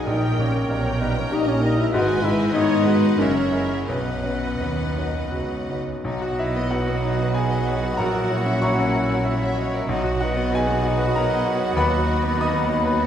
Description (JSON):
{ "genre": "classical, romantic movement for piano and orchestra", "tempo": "81-100 BPM", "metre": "3/4", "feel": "rubato", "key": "B major", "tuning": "A4 = 440 Hz", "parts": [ { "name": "bright grand piano", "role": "melody", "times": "0.0-13.1 s", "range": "A#1 to D#6", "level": "-24 LUFS", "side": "left 1 dB", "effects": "none" }, { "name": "rich studio violin section", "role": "melody", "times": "0.0-13.1 s", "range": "F#5 to A#5", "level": "-37 LUFS", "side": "left 3 dB", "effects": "none" }, { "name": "rich studio violin section", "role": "second line", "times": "0.0-13.1 s", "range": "B3 to G5", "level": "-33 LUFS", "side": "left 1 dB", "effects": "none" }, { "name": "warm oboe", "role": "second line", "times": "0.0-13.1 s", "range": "B4 to F#5", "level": "-34 LUFS", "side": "right 2 dB", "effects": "none" }, { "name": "rich studio viola section", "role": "accompaniment", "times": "0.0-13.1 s", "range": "F#4 to C#5", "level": "-33 LUFS", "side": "right 2 dB", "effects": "none" }, { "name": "mellow French horn section", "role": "sustained chords", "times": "0.0-13.1 s", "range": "F#3 to F#4", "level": "-27 LUFS", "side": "left 2 dB", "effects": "none" }, { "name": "rich studio cello section", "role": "bass", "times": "0.0-13.1 s", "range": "D#2 to G#3", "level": "-28 LUFS", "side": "right 2 dB", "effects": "none" }, { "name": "rich studio double bass section", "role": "bass", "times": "0.0-13.1 s", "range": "F#1 to G#2", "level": "-28 LUFS", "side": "right 2 dB", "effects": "none" }, { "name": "mellow clarinet", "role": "second line", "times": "0.1-13.1 s", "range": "A#4 to F#5", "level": "-34 LUFS", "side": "left 1 dB", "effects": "none" }, { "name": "mellow hollow concert flute", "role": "second line", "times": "0.1-13.1 s", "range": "D#5 to B5", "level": "-34 LUFS", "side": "left 2 dB", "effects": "none" }, { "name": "mellow bassoon", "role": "accompaniment", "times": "0.1-13.1 s", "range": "F#3 to G#3", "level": "-32 LUFS", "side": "equal", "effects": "none" } ], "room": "wet scoring stage reverb, RT60 1.5 s", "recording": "heard from further back in the room", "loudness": "-19 LUFS", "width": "side -9 dB against mid", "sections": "0.0-6.1 A section; 6.1-13.1 B section", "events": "none", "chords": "0.1 D#7/A#; 1.9 G#m7; 3.2 F#9; 3.9 B; 8.0 F#7/A#; 9.9 B; 11.8 B/D#" }